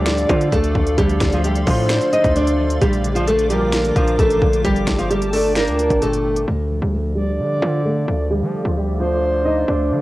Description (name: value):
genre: hip hop, trap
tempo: 131 BPM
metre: 4/4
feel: half-time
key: D minor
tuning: A4 = 440 Hz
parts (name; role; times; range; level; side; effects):
- nylon-string guitar; melody; 0.0-10.0 s; F3 to Eb5; -20 LUFS; equal; low-pass filter, cassette tape
- breathy flute-like synth lead; second line; 0.0-10.0 s; Bb4 to D5; -24 LUFS; right 1 dB; chorus, cassette tape, tape echo
- concert harp; accompaniment; 0.0-10.0 s; Bb2 to D5; -25 LUFS; left 2 dB; low-pass filter, cassette tape
- hollow soft pad; sustained chords; 0.0-10.0 s; F4 to D6; -31 LUFS; equal; ensemble chorus, low-pass filter, cassette tape
- sync-sweep polysynth; stabs; 0.0-0.3, 3.5-3.9 s; D2 to F3; -26 LUFS; right 1 dB; chorus, cassette tape
- hard-hitting 808-style bass; bass; 0.0-10.0 s; G1 to F3; -21 LUFS; equal; none
- trap drum kit; drums; 0.1-6.5 s; finger snaps, hi-hat, kick drum, snare drum; -22 LUFS; equal; none
room: light reverb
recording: home recording on cassette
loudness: -16 LUFS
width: side -17 dB against mid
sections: 0.0-6.5 A section; 6.5-10.0 B section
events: filter sweep 6.5-10.0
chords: 0.0 Dm; 2.8 Bb; 4.6 Gmadd9; 6.5 Dm